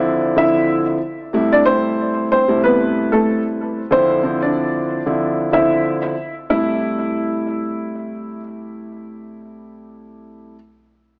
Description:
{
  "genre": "hip hop",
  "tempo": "93 BPM",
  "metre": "4/4",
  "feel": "swing 55% on 16ths",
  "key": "A minor",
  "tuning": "A4 = 440 Hz",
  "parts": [
    { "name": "warm upright piano", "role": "melody", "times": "0.0-8.4 s", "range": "A3 to E5", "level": "-21 LUFS", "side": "equal", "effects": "high-pass filter, low-pass filter, tape echo" },
    { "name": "dark grand piano", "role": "accompaniment", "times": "0.0-10.5 s", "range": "C3 to E4", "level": "-22 LUFS", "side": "equal", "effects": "high-pass filter, low-pass filter" }
  ],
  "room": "light reverb, small room ambience",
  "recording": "small speaker sound, faint mains hum",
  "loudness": "-18 LUFS",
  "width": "mono",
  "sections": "0.0-6.5 A section; 6.5-9.1 B section",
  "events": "none",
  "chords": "0.0 Dm9; 1.3 Am7; 3.9 Dm9; 6.5 Am7",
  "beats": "0.05 0.69 | 1.34 1.98 2.63 3.27 | 3.92 4.56 5.21 5.85 | 6.50 7.14 7.79 8.44"
}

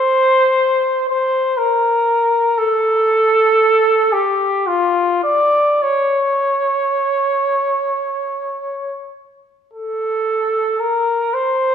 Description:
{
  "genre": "classical, free, expressive piece for unaccompanied trumpet",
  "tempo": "21-42 BPM (dotted quarters)",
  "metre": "6/8",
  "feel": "rubato",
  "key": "unclear",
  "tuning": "A4 = 441 Hz",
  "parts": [
    { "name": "warm trumpet", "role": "solo", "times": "0.0-11.7 s", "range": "F4 to D5", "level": "-14 LUFS", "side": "equal", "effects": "none" }
  ],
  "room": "wet recital hall reverb, RT60 1.7 s",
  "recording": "heard from further back in the room",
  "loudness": "-14 LUFS",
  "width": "side -8 dB against mid",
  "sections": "0.0-9.7 A section; 9.7-11.7 B section",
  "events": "none",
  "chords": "none",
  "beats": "1.10 | 2.59 4.13 | 5.83 7.57 | 9.73 11.34"
}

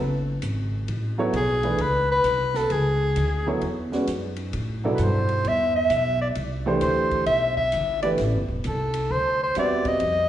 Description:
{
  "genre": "modal jazz",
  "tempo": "132 BPM",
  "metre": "4/4",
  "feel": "swing 66% on 8ths",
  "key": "unclear",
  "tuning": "A4 = 440 Hz",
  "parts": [
    { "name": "upright bass", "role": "bass", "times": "0.0-10.3 s", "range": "E1 to A2", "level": "-26 LUFS", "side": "equal", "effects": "none" },
    { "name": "open jazz drum kit", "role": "drums", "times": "0.4-10.1 s", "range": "hi-hat, kick drum, ride cymbal, snare drum", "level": "-37 LUFS", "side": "left 2 dB", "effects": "none" },
    { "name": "warm concert grand piano", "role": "accompaniment", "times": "1.2-10.0 s", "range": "B2 to E5", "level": "-26 LUFS", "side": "right 2 dB", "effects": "slapback echo" },
    { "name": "breathy soprano saxophone", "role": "melody", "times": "1.4-10.3 s", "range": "G#4 to E5", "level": "-23 LUFS", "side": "left 1 dB", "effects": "slapback echo" }
  ],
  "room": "light reverb, small room ambience",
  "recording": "live gig heard through the venue's PA, recital hall reverb, nothing above 10.8 kHz",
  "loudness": "-21 LUFS",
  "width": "side -11 dB against mid",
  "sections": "0.0-10.3 A section",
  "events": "none",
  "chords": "0.0 F#m11; 4.5 Am11",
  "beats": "0.42 | 0.88 1.34 1.79 2.25 | 2.71 3.17 3.62 4.08 | 4.53 4.99 5.45 5.90 | 6.36 6.82 7.27 7.73 | 8.19 8.64 9.10 9.55 | 10.01"
}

